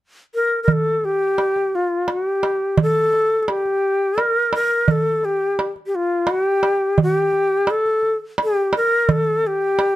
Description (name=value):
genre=Arabic maqam ensemble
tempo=86 BPM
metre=3/4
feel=straight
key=unclear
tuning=A4 = 440 Hz
part: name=bright shakuhachi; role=melody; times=0.3-10.0 s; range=F4 to Bb4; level=-18 LUFS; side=left 1 dB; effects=none
part: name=darbuka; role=percussion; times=0.7-9.9 s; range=none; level=-20 LUFS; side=right 3 dB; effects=none
room=light reverb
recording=none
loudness=-17 LUFS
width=side -15 dB against mid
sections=0.7-10.0 A section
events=none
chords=none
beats=| 0.68 1.38 2.08 | 2.78 3.48 4.18 | 4.88 5.58 6.28 | 6.98 7.68 8.38 | 9.09 9.79